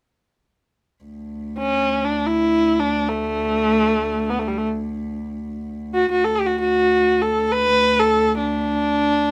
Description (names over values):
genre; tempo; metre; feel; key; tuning
turkish; free time; none; none; D makam rast; A4 = 438 Hz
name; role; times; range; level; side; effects
warm cello; drone; 1.0-9.3 s; D2; -28 LUFS; equal; none
rich kamancheh; melody; 1.6-9.3 s; G3 to B4; -20 LUFS; equal; none
room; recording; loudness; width
light reverb; none; -20 LUFS; mono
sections
1.0-9.3 A section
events
none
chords
none